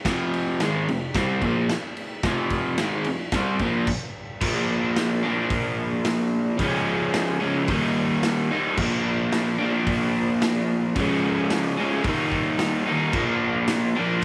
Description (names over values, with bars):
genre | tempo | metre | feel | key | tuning
garage rock duo or trio | 110 BPM | 4/4 | straight | unclear | A4 = 440 Hz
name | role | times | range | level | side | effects
crunchy overdriven guitar | riff | 0.1-14.2 s | F2 to Eb4 | -24 LUFS | equal | none
raw garage drum kit | drums | 0.1-14.2 s | crash cymbal, hi-hat, kick drum, ride cymbal, snare drum | -31 LUFS | equal | none
room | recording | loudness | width
light reverb, small room ambience | none | -24 LUFS | mono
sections
0.0-4.4 A section; 4.4-14.2 B section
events
stop 3.9-4.4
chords
0.0 F5; 3.9 N.C.; 4.4 Bb; 6.6 Db; 7.7 Eb; 8.8 Bb; 11.0 Db; 12.1 Eb; 13.1 Bb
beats
| 0.06 0.60 1.15 1.70 | 2.24 2.79 3.33 3.88 | 4.42 4.97 5.51 6.06 | 6.60 7.15 7.69 8.24 | 8.78 9.32 9.87 10.42 | 10.96 11.51 12.05 12.60 | 13.15 13.70 14.24